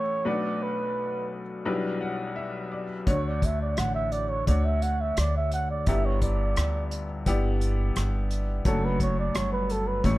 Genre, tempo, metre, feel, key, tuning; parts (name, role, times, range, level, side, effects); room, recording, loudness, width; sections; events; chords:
acoustic folk-pop ballad; 86 BPM; 4/4; straight; D major; A4 = 440 Hz
breathy flugelhorn; melody; 0.0-10.2 s; A4 to F#5; -29 LUFS; right 3 dB
bright upright piano; accompaniment; 0.0-10.2 s; G1 to F#5; -30 LUFS; left 3 dB
upright bass; bass; 3.1-10.2 s; F#1 to D2; -27 LUFS; equal
unplugged drum kit; drums; 3.1-10.2 s; hi-hat, kick drum, rim click; -28 LUFS; equal
light reverb; dark, warm production; -24 LUFS; side -18 dB against mid
0.0-10.2 A section
0.3 Bm7; 1.7 G6/B; 3.1 Dmaj7; 5.9 G6; 8.7 Dmaj7/F#